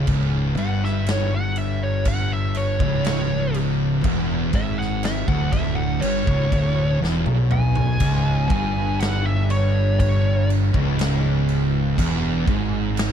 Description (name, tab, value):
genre	stoner and doom metal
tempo	61 BPM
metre	4/4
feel	straight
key	unclear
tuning	A4 = 440 Hz
part	thick fuzz guitar	riff	0.0-13.1 s	C#2 to B2	-24 LUFS	left 7 dB	distortion
part	thick fuzz guitar	riff	0.0-13.1 s	C#2 to B2	-23 LUFS	right 7 dB	distortion
part	fuzz fingered electric bass	bass	0.0-13.1 s	C#1 to B1	-28 LUFS	equal	overdrive
part	big rock drum kit	drums	0.1-13.1 s	crash cymbal, kick drum, snare drum, splash cymbal, toms	-26 LUFS	equal	none
part	fuzz lead guitar	melody	0.6-10.5 s	C#5 to G#5	-28 LUFS	equal	wah, distortion, ping-pong delay
part	distorted electric guitar	riff	8.0-13.1 s	C#2 to G#2	-28 LUFS	left 1 dB	distortion
room	little or no reverb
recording	dark, warm production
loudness	-18 LUFS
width	side -8 dB against mid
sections	0.0-13.1 A section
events	lead electric guitar solo 0.0-13.1; drum fill 7.0-8.0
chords	0.0 C#m